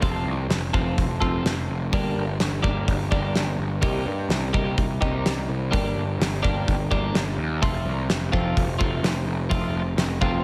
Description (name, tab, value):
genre	quiet-loud alternative rock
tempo	127 BPM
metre	4/4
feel	straight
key	unclear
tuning	A4 = 439 Hz
part	twelve-string electric guitar	arpeggios	0.0-10.4 s	F3 to A4	-30 LUFS	equal	subtle chorus, slapback echo
part	fuzz picked electric bass	bass	0.0-10.4 s	F1 to G2	-28 LUFS	equal	overdrive
part	loose indie drum kit	drums	0.0-10.3 s	hi-hat, kick drum, snare drum	-28 LUFS	equal	none
room	moderate concert hall reverb, RT60 1.7 s, studio reverb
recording	big arena sound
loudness	-24 LUFS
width	mono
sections	0.0-10.4 A section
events	none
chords	0.0 F; 1.9 Gm; 3.8 Cm7; 5.7 Gm; 7.6 F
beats	| 0.03 0.51 0.98 1.46 | 1.93 2.41 2.88 3.36 | 3.83 4.30 4.78 5.25 | 5.73 6.20 6.67 7.15 | 7.62 8.09 8.57 9.04 | 9.51 9.98